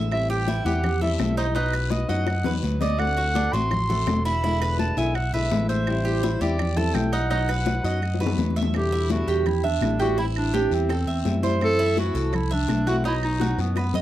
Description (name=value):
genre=latin, Cuban son and guajira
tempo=167 BPM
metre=4/4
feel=straight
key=E minor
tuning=A4 = 441 Hz
part: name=flamenco guitar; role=accompaniment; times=0.0-13.8 s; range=B2 to F#4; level=-29 LUFS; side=left 3 dB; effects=none
part: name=Cuban tres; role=arpeggios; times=0.0-14.0 s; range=D4 to E5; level=-29 LUFS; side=right 6 dB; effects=slapback echo
part: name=picked electric bass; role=bass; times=0.0-14.0 s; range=E1 to F#2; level=-26 LUFS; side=equal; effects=none
part: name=bright clarinet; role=melody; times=0.1-14.0 s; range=B3 to C6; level=-27 LUFS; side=right 1 dB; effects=none
part: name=bongos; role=percussion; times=0.1-14.0 s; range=none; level=-33 LUFS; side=left 8 dB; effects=none
part: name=claves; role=percussion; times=0.1-13.9 s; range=none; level=-36 LUFS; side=right 14 dB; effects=none
part: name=congas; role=percussion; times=0.1-14.0 s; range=none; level=-30 LUFS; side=left 2 dB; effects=none
part: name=guiro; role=percussion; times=0.1-14.0 s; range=none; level=-41 LUFS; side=left 20 dB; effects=none
room=little or no reverb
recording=dry, close 1970s-style studio recording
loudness=-21 LUFS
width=side -13 dB against mid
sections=0.0-8.7 A section; 8.7-14.0 B section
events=drum fill 1.9-3.0, 7.7-8.7, 13.6-14.0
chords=0.1 Am7; 1.6 B; 3.0 D7; 4.4 E7; 5.9 Am7; 7.3 B; 8.7 Em7; 10.2 Am7; 11.6 F#m7b5; 13.1 B